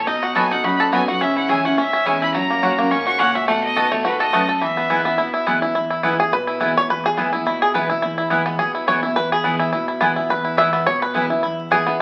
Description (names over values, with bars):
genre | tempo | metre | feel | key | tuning
bluegrass | 211 BPM | 4/4 | swing 55% on 8ths | E major | A4 = 440 Hz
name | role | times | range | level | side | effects
bluegrass banjo | melody | 0.0-12.0 s | E3 to E5 | -22 LUFS | equal | none
clear fiddle | melody | 0.0-5.4 s | B4 to C#6 | -24 LUFS | equal | none
picked steel-string acoustic guitar | accompaniment | 0.0-12.0 s | E2 to F#4 | -27 LUFS | equal | none
upright bass | bass | 0.1-12.0 s | F#1 to F#2 | -42 LUFS | equal | none
mandolin | stabs | 0.4-11.8 s | A#3 to B5 | -25 LUFS | equal | none
room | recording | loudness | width
moderate large studio reverb, RT60 0.9 s | very old 78 rpm record, vinyl crackle | -19 LUFS | mono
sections
0.0-5.8 A section; 5.8-12.0 B section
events
five-string banjo solo 5.8-12.0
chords
0.1 B; 1.2 C#m; 2.3 F#; 3.5 B7; 4.6 E